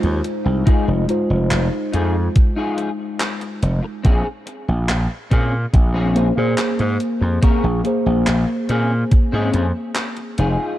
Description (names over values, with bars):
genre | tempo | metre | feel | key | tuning
vaporwave | 71 BPM | 4/4 | straight | Bb minor | A4 = 440 Hz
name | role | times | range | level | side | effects
tine electric piano | accompaniment | 0.0-10.4 s | Ab3 to Db6 | -21 LUFS | equal | wide subtle chorus, analog delay
electric guitar at the edge of break-up | riff | 0.0-10.8 s | C4 to Bb4 | -27 LUFS | left 3 dB | ensemble chorus, low-pass filter, analog delay
gritty slap bass | bass | 0.0-10.6 s | F1 to Bb2 | -18 LUFS | equal | overdrive
gated 80s digital drum machine | drums | 0.0-10.6 s | handclaps, hi-hat | -27 LUFS | equal | gated reverb, overdrive
electronic kick drum | drums | 0.7-9.3 s | none | -14 LUFS | equal | overdrive
room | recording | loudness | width
light reverb | dark, warm production, cassette tape | -16 LUFS | side -14 dB against mid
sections
0.0-10.8 A section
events
none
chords
0.0 Fm7; 4.0 Bbm9